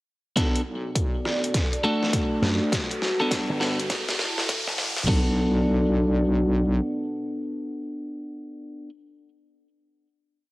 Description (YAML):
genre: glitch hop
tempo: 102 BPM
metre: 4/4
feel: swing 63% on 16ths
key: B minor pentatonic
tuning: A4 = 443 Hz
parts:
  - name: dark analog pad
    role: sustained chords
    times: 0.7-8.2 s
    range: G3 to D5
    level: -31 LUFS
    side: equal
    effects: chorus, phaser, sidechain pumping, cassette tape
  - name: clean electric guitar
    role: stabs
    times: 0.4-8.9 s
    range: A3 to A4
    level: -26 LUFS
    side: equal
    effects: sidechain pumping, cassette tape, tape echo
  - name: wobble bass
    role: bass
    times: 0.4-6.8 s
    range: B1 to D2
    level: -24 LUFS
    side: equal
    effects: chorus, high-pass filter
  - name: dubstep drum kit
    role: drums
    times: 0.4-5.2 s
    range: crash cymbal, hi-hat, rim click, snare drum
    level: -29 LUFS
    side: equal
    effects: high-pass filter on snare, cassette tape, high-pass filter on hats, high-pass filter on cymbals, high-pass filter on room
  - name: electronic kick drum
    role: drums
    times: 0.4-5.2 s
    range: none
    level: -26 LUFS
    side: equal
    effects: cassette tape
  - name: riser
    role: sound effects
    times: 1.8-5.1 s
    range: none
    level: -33 LUFS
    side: right 1 dB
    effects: none
  - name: slap bass with an envelope filter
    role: bass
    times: 2.4-5.1 s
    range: F#1 to F#2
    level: -29 LUFS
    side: equal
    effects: none
room: light reverb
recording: home recording on cassette, high-pass filter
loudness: -22 LUFS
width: side -19 dB against mid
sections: 0.4-5.1 build; 5.1-7.4 final chord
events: build-up 0.4-5.1; drum fill 0.4-5.1; filter sweep 0.4-5.1; riser 1.8-5.1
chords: 0.4 Bm7; 1.5 D; 2.7 Gmaj9; 3.9 F#m7; 5.1 Bm7